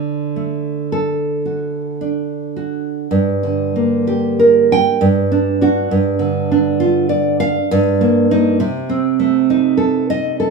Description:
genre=romantic piece for solo classical guitar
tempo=52-68 BPM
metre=3/4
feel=rubato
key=G minor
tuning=A4 = 440 Hz
part: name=nylon-string guitar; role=solo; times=0.0-10.5 s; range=G2 to G5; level=-14 LUFS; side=right 3 dB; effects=none
room=moderate stone room reverb, RT60 1.0 s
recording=band playing live in one room, studio reverb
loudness=-14 LUFS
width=side -4 dB against mid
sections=0.0-3.1 A section; 3.1-10.5 B section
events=none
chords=0.0 D; 3.1 Gm; 5.0 D/G; 5.9 Dm/G; 7.7 Eb/G; 8.6 Adim/C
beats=0.92 2.02 | 3.10 4.08 5.00 | 5.92 6.81 7.71 | 8.61 9.49 10.39

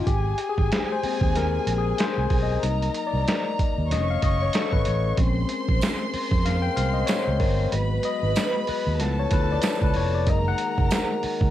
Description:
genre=lush 1970s-style soul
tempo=94 BPM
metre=4/4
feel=swing 58% on 16ths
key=unclear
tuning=A4 = 439 Hz
part: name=warm studio violin section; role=second line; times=0.0-11.5 s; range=Ab4 to C#6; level=-31 LUFS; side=right 1 dB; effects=cassette tape
part: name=barky tine electric piano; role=accompaniment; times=0.0-11.5 s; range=Bb2 to G5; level=-27 LUFS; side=left 8 dB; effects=overdrive, cassette tape
part: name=fingered electric bass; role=bass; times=0.1-11.5 s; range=F1 to F2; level=-25 LUFS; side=right 1 dB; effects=none
part: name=trip hop sampler-style drum kit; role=drums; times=0.1-11.5 s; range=hi-hat, kick drum, snare drum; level=-25 LUFS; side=right 1 dB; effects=none
part: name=mellow French horn section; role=sustained chords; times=5.2-11.5 s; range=Db3 to C5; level=-32 LUFS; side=right 3 dB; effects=cassette tape
part: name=tambourine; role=percussion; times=5.8-11.1 s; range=none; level=-39 LUFS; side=right 16 dB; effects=none
room=light reverb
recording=home recording on cassette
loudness=-21 LUFS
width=side -12 dB against mid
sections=0.0-11.5 A section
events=tine electric piano solo 0.0-11.5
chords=0.1 Ab; 2.6 Cm7b5; 3.9 F7b13; 5.2 Bbm9; 7.7 Abm7; 9.0 Db7alt; 10.3 Gb69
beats=| 0.07 0.71 1.35 1.99 | 2.62 3.26 3.90 4.54 | 5.18 5.81 6.45 7.09 | 7.72 8.36 9.00 9.64 | 10.27 10.91

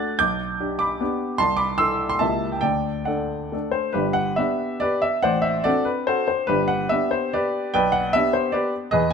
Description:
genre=classical, romantic triple-time dance for piano with dotted rhythms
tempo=127-163 BPM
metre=3/4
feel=rubato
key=G major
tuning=A4 = 440 Hz
part: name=warm baby grand piano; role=solo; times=0.0-9.1 s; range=G1 to A6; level=-20 LUFS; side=equal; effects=none
room=moderate stone room reverb, RT60 1.1 s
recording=none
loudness=-20 LUFS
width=side -6 dB against mid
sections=0.0-4.0 A section; 4.0-9.1 B section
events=none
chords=0.2 G/B; 1.4 Am/C; 2.2 C#dim7; 2.6 D; 4.0 G; 5.2 D7/A; 6.5 G; 7.7 G/B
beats=| 0.20 0.60 1.00 | 1.40 1.79 2.21 | 2.64 3.08 3.54 | 3.96 4.39 4.83 | 5.24 5.66 6.09 | 6.49 6.91 7.34 | 7.74 8.14 8.54 | 8.93

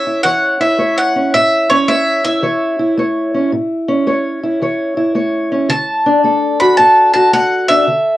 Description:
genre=blues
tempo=110 BPM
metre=4/4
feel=swing 66% on 8ths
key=A major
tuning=A4 = 440 Hz
part: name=bowl-back mandolin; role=melody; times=0.0-8.2 s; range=C#5 to B5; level=-12 LUFS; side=equal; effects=cassette tape
part: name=fingerpicked steel-string acoustic guitar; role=accompaniment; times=0.0-8.2 s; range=A2 to C#5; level=-15 LUFS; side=equal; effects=none
room=light reverb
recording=home recording on cassette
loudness=-11 LUFS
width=side -15 dB against mid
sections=0.0-8.2 A section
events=none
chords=0.0 A; 5.7 D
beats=0.23 0.78 | 1.33 1.87 2.42 2.96 | 3.51 4.05 4.60 5.15 | 5.69 6.24 6.78 7.33 | 7.87

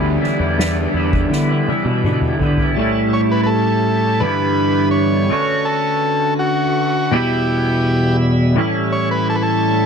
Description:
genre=psychedelic rock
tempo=83 BPM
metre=4/4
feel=straight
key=unclear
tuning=A4 = 440 Hz
part: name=bright tonewheel organ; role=sustained chords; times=0.0-9.9 s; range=D4 to E6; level=-29 LUFS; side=right 4 dB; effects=slow rotary speaker
part: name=twangy electric guitar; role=riff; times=0.0-9.9 s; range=E2 to F#4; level=-16 LUFS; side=equal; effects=rotary speaker, double-tracked left and right
part: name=fuzz fingered electric bass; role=bass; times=0.0-2.5 s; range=D2 to D3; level=-19 LUFS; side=equal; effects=overdrive
part: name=soft-mallet drum kit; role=drums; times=0.2-2.7 s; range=kick drum, ride cymbal, snare drum, toms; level=-24 LUFS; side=left 1 dB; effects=none
part: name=combo organ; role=melody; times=3.1-9.9 s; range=F#4 to C#5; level=-19 LUFS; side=equal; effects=slapback echo
room=small room ambience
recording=dry, close 1970s-style studio recording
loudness=-14 LUFS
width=side -6 dB against mid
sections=0.0-2.8 A section; 2.8-9.9 B section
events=drum fill 1.3-2.8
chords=0.0 G6/D; 2.8 A7; 4.2 G6; 5.3 Dmaj7; 7.1 Em; 8.6 A7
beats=0.58 1.31 2.03 | 2.76 3.48 4.21 4.93 | 5.66 6.39 7.11 7.84 | 8.57 9.29

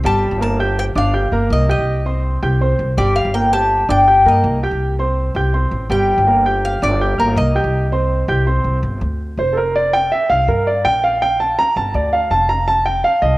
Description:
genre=latin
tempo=164 BPM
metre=4/4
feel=straight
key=G minor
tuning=A4 = 440 Hz
part: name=warm grand piano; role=arpeggios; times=0.0-13.4 s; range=G3 to G6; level=-17 LUFS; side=right 1 dB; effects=cassette tape
part: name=upright bass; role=bass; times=0.0-13.4 s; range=F1 to G2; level=-19 LUFS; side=equal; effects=none
part: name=Cuban tres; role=melody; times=0.1-8.6 s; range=Bb4 to A5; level=-17 LUFS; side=left 1 dB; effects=none
room=moderate spring reverb, RT60 2.5 s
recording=home recording on cassette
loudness=-14 LUFS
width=side -18 dB against mid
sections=0.0-8.8 A section; 8.8-13.4 B section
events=grand piano solo 8.8-13.4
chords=0.0 Gm7; 1.5 Cm7; 3.0 Gm; 4.4 C5; 5.9 Gm; 7.4 Cm7; 8.8 G5; 10.3 N.C.; 11.8 G5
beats=| 0.05 0.41 0.78 1.15 | 1.51 1.88 2.25 2.61 | 2.98 3.35 3.71 4.08 | 4.44 4.81 5.17 5.54 | 5.91 6.27 6.64 7.00 | 7.37 7.74 8.10 8.47 | 8.84 9.20 9.57 9.93 | 10.30 10.67 11.03 11.40 | 11.77 12.13 12.50 12.87 | 13.23

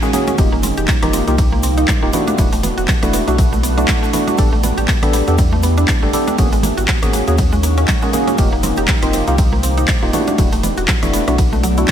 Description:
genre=deep house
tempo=120 BPM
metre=4/4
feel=swing 57% on 16ths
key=unclear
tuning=A4 = 440 Hz
part: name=deep dark ambient pad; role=sustained chords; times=0.0-11.9 s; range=A3 to G4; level=-23 LUFS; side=right 1 dB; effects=chorus, built-in reverb, sidechain pumping
part: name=mallet-like synth pluck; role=arpeggios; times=0.0-11.9 s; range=F#3 to G4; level=-23 LUFS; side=right 3 dB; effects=chorus, sidechain pumping, diffuse ambient delay
part: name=percussive organ stab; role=stabs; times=0.0-11.9 s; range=A3 to A4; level=-20 LUFS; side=equal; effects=analog chorus, cassette tape, sidechain pumping, diffuse ambient delay
part: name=egg shaker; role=percussion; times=0.0-11.9 s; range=none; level=-30 LUFS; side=left 4 dB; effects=none
part: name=house drum kit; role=drums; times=0.1-11.9 s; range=handclaps, hi-hat, ride cymbal, rim click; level=-23 LUFS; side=left 1 dB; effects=none
part: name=congas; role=percussion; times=0.1-11.9 s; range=none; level=-28 LUFS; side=right 3 dB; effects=none
part: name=warm sub bass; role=bass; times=0.4-11.9 s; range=Eb1 to E2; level=-18 LUFS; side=equal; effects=sidechain pumping
part: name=electronic kick drum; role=drums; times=0.4-11.9 s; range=none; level=-17 LUFS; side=equal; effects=none
room=light reverb, digital ambience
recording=none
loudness=-13 LUFS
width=side -9 dB against mid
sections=0.0-11.9 A section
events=none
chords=0.4 F9sus4; 2.1 E9sus4; 4.4 A9sus4; 6.4 G#9sus4; 8.4 F9sus4; 10.1 E9sus4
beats=| 0.38 0.88 1.38 1.88 | 2.38 2.88 3.38 3.88 | 4.38 4.88 5.38 5.88 | 6.38 6.88 7.38 7.88 | 8.38 8.88 9.38 9.88 | 10.38 10.88 11.38 11.88

